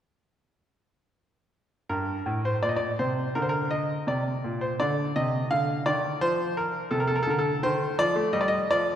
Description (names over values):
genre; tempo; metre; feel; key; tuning
classical, baroque-style suite movement for grand piano; 84 BPM; 4/4; rubato; G minor; A4 = 437 Hz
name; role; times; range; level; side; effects
clear baby grand piano; solo; 1.9-9.0 s; G2 to F5; -24 LUFS; equal; none
room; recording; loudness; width
wet concert hall reverb, RT60 2.5 s; recorded in a church or concert hall; -24 LUFS; side -10 dB against mid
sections
1.9-9.0 A section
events
none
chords
1.9 Gm (rootless); 4.8 Dm; 7.6 Cm/Eb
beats
| 1.90 2.63 3.36 4.09 | 4.80 5.51 6.22 6.93 | 7.64 8.35